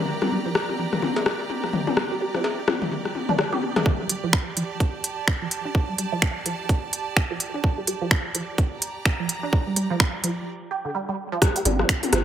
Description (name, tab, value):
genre	minimal techno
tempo	127 BPM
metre	4/4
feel	swing 59% on 16ths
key	G minor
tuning	A4 = 440 Hz
part	resonant blip pluck	riff	0.0-12.2 s	D3 to G4	-29 LUFS	right 3 dB	phaser, ensemble chorus, sidechain pumping, analog delay
part	bright studio string section	texture	0.0-10.5 s	G4 to Bb5	-32 LUFS	right 4 dB	sidechain pumping
part	bubbling stepped-filter texture	texture	0.0-3.9 s	Bb4	-43 LUFS	right 2 dB	none
part	garage drum kit	drums	0.1-12.2 s	finger snaps, hi-hat	-24 LUFS	right 1 dB	low-pass filter on hats, low-pass filter on snare, low-pass filter on room
part	garage drum kit	percussion	0.2-3.8, 11.4-12.2 s	cowbell, rim click, toms	-23 LUFS	left 3 dB	dub echo
part	electronic kick drum	drums	3.9-12.0 s	none	-23 LUFS	right 1 dB	none
part	punchy sub bass	bass	11.7-12.2 s	G1	-24 LUFS	right 1 dB	sidechain pumping
room	moderate spring reverb, RT60 1.5 s, digital ambience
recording	echo-heavy mix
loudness	-22 LUFS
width	side -10 dB against mid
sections	0.0-3.9 A section; 3.9-11.4 B section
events	filter sweep on synth arpeggio sound 0.0-3.9, 3.9-11.4; build-up 3.9-11.4; break 10.5-11.4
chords	0.0 Gm; 11.4 G5